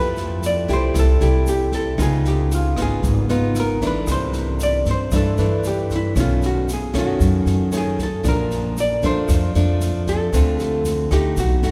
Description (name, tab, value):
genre	bossa nova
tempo	115 BPM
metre	4/4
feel	straight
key	unclear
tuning	A4 = 440 Hz
part	hollow-body jazz guitar	melody	0.0-11.7 s	E4 to D5	-27 LUFS	equal	none
part	nylon-string guitar	accompaniment	0.0-11.7 s	F2 to G4	-25 LUFS	equal	none
part	upright bass	bass	0.0-11.7 s	Ab1 to G2	-23 LUFS	equal	none
part	open jazz drum kit	drums	0.2-11.7 s	kick drum, rim click, snare drum	-28 LUFS	equal	none
part	tube shaker	percussion	0.2-11.7 s	none	-42 LUFS	equal	none
room	wet cathedral reverb, RT60 5.4 s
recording	recorded in a church or concert hall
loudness	-19 LUFS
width	mono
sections	0.0-11.7 A section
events	none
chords	0.0 Fmaj9; 2.0 Db9; 4.1 C69; 6.2 B9; 8.2 Bbmaj7; 10.3 Dm7